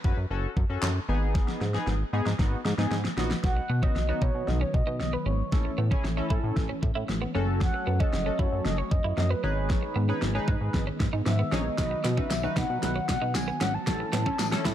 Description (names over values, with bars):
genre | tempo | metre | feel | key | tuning
dance-pop | 115 BPM | 4/4 | straight | unclear | A4 = 439 Hz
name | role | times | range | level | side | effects
chorused polysynth | accompaniment | 0.0-14.7 s | B3 to C#5 | -34 LUFS | left 2 dB | sidechain pumping
chorused synth bass | bass | 0.0-14.7 s | F#1 to B2 | -28 LUFS | equal | sidechain pumping
pop drum kit | drums | 0.0-14.7 s | handclaps, hi-hat, kick drum, snare drum | -28 LUFS | equal | overdrive
mellow horn-like synth lead | melody | 3.4-14.7 s | B4 to A5 | -32 LUFS | equal | chorus, digital delay
warm analog pad | sustained chords | 3.4-14.7 s | D#3 to C#4 | -36 LUFS | equal | chorus, sidechain pumping
twelve-string electric guitar | riff | 3.6-14.7 s | B3 to E4 | -37 LUFS | right 5 dB | lush chorus
tambourine | percussion | 12.3-14.5 s | none | -41 LUFS | left 10 dB | none
room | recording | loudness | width
light reverb | dark, warm production, high-pass filter | -25 LUFS | side -11 dB against mid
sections
0.0-3.4 A section; 3.4-14.7 B section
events
drum fill 1.4-3.4, 3.4-14.7; build-up 3.4-14.7; filter sweep 3.4-14.7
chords
0.0 F#m; 1.1 G#m; 3.4 B; 5.5 A; 7.3 F#m; 9.4 G#m; 11.8 B; 13.9 A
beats
0.31 0.83 | 1.35 1.87 2.39 2.92 | 3.44 3.96 4.48 5.00 | 5.52 6.05 6.57 7.09 | 7.61 8.13 8.65 9.18 | 9.70 10.22 10.74 11.26 | 11.79 12.31 12.83 13.35 | 13.87 14.39